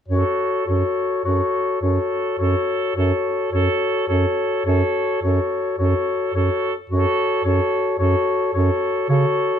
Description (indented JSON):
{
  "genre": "classical, lyrical piece for single-reed quartet",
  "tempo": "53 BPM",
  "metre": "4/4",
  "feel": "rubato",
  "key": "F# minor",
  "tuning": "A4 = 438 Hz",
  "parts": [
    { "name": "warm clarinet", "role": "melody", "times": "0.1-9.6 s", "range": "C#5", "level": "-26 LUFS", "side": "left 9 dB", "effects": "none" },
    { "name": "bright alto saxophone", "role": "second line", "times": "0.1-9.6 s", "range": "A4", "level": "-24 LUFS", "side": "right 8 dB", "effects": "none" },
    { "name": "warm clarinet", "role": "accompaniment", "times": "0.1-9.6 s", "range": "F#4", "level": "-23 LUFS", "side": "left 3 dB", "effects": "none" },
    { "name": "mellow bass clarinet", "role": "bass", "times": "0.1-9.3 s", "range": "F#2 to C#3", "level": "-20 LUFS", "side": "right 2 dB", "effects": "none" }
  ],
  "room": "light reverb",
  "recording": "none",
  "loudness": "-18 LUFS",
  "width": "side -8 dB against mid",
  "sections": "0.1-9.6 A section",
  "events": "none",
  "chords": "0.1 F#m; 9.1 F#m/C#"
}